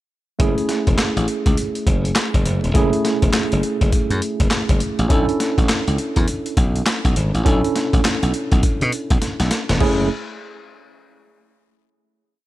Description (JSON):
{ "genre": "R&B, new jack swing", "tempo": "102 BPM", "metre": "4/4", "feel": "swing 62% on 16ths", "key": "F# minor", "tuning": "A4 = 439 Hz", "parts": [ { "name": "tine electric piano", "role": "accompaniment", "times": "0.4-10.1 s", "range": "A3 to A4", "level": "-22 LUFS", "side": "right 2 dB", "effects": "medium stereo tremolo" }, { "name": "slap bass", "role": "bass", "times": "0.4-10.1 s", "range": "E1 to B2", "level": "-20 LUFS", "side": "equal", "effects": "none" }, { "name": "breakbeat sampler-style drum kit", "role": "drums", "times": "0.4-10.0 s", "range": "crash cymbal, handclaps, hi-hat, kick drum, snare drum", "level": "-19 LUFS", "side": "equal", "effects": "overdrive" } ], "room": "little or no reverb", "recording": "none", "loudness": "-16 LUFS", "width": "side -16 dB against mid", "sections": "0.4-9.8 verse; 9.8-12.2 final chord", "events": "drum fill 9.2-9.8", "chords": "0.4 F#m9; 5.1 Bm11; 9.8 F#m9" }